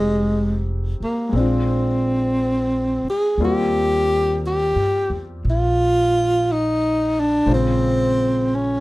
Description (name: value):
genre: jazz ballad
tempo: 59 BPM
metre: 4/4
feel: swing 66% on 8ths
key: unclear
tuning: A4 = 440 Hz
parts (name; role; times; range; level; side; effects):
- breathy tenor saxophone; melody; 0.0-8.8 s; Ab3 to Ab4; -19 LUFS; equal; none
- warm concert grand piano; accompaniment; 0.0-8.8 s; Db3 to C5; -27 LUFS; left 3 dB; none
- upright bass; bass; 0.0-8.8 s; F1 to G2; -23 LUFS; equal; none
room: light reverb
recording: none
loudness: -17 LUFS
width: side -19 dB against mid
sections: 0.0-8.8 A section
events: none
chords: 0.0 Fm9; 1.3 Bb9; 3.4 Eb6; 7.5 Bbm7